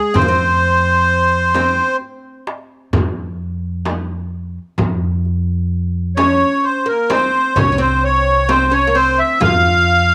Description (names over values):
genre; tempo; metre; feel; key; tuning
Arabic maqam ensemble; 130 BPM (eighths); 10/8; straight; unclear; A4 = 440 Hz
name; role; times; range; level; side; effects
accordion; melody; 0.0-10.1 s; Ab4 to F5; -16 LUFS; equal; light tremolo tuning
oud; second line; 0.0-10.1 s; Ab3 to F4; -24 LUFS; equal; none
upright bass; bass; 0.2-10.1 s; C2 to F2; -22 LUFS; equal; none
darbuka; percussion; 0.2-10.0 s; none; -25 LUFS; equal; none
frame drum; percussion; 0.2-9.6 s; none; -26 LUFS; equal; none
room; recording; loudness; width
light reverb; none; -16 LUFS; mono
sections
0.0-10.1 A section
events
none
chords
none